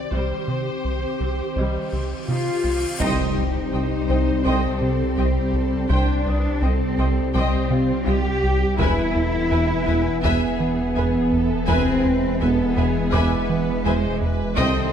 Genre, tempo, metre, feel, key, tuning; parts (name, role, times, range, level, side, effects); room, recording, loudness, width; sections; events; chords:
cinematic, hybrid orchestral and electronic film score; 83 BPM; 4/4; straight; A4 = 440 Hz
warm symphonic violin section; melody; 0.0-14.9 s; F4 to D5; -32 LUFS; left 5 dB
warm symphonic viola section; accompaniment; 0.0-14.9 s; G3 to G5; -30 LUFS; equal
ethereal airy pad; sustained chords; 0.0-14.9 s; Eb3 to G#5; -29 LUFS; left 1 dB; ensemble chorus, built-in reverb
dark concert grand piano; texture; 0.0-14.9 s; C4 to Eb6; -36 LUFS; left 3 dB; ping-pong delay
rubbery square bass; riff; 0.1-14.8 s; C2 to E3; -25 LUFS; right 1 dB
rich symphonic cello section; bass; 0.1-14.9 s; C3 to G4; -26 LUFS; right 2 dB
cymbal swell and impact; sound effects; 1.7-5.9 s; -34 LUFS; left 1 dB
mellow French horn section; sustained chords; 2.3-14.9 s; G#3 to G4; -28 LUFS; left 4 dB
rich symphonic violin section; second line; 3.0-14.9 s; Eb5 to G#5; -31 LUFS; left 5 dB
warm trombone section; sustained chords; 3.0-14.9 s; C3 to B3; -31 LUFS; right 5 dB
mellow tuba; bass; 3.0-14.7 s; E1 to C2; -31 LUFS; right 5 dB
warm symphonic double bass section; bass; 3.0-14.7 s; C2 to E2; -30 LUFS; right 3 dB
wide detuned saw bass; bass; 3.0-14.9 s; E1 to C2; -28 LUFS; left 1 dB; chorus
taiko ensemble; drums; 3.0-14.9 s; -28 LUFS; left 1 dB
moderate scoring stage reverb, RT60 1.8 s; -19 LUFS; side -8 dB against mid
0.0-3.0 A section; 3.0-14.9 B section
cymbal swell 1.7-3.0; band accent 3.0-3.7; impact 3.0-5.9
0.0 Cm; 8.8 E